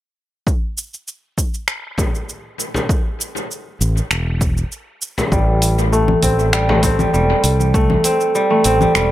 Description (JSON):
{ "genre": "organic downtempo", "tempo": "99 BPM", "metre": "4/4", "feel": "straight", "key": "A minor", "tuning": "A4 = 441 Hz", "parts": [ { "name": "deep house drum kit", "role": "drums", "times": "0.5-9.1 s", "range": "congas, finger snaps, hi-hat, shaker", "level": "-22 LUFS", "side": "left 1 dB", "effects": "overdrive, tape echo" }, { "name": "electronic kick drum", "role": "drums", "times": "0.5-7.9 s", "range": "none", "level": "-19 LUFS", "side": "equal", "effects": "overdrive" }, { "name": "frame drum", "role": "percussion", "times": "2.0-6.8 s", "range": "none", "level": "-26 LUFS", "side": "left 1 dB", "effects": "tape echo" }, { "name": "fretless electric bass", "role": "bass", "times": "3.8-9.1 s", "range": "E1 to C2", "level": "-17 LUFS", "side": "equal", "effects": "none" }, { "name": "kora", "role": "arpeggios", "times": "5.3-9.1 s", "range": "G3 to C4", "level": "-16 LUFS", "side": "equal", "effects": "low-pass filter, tape echo" } ], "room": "wet spring reverb, RT60 2.6 s", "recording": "echo-heavy mix", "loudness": "-15 LUFS", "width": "side -14 dB against mid", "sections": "0.5-5.3 A section; 5.3-9.1 B section", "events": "break 4.7-5.3; filter sweep on kora 5.3-9.1", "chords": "0.5 A5; 5.3 Am7" }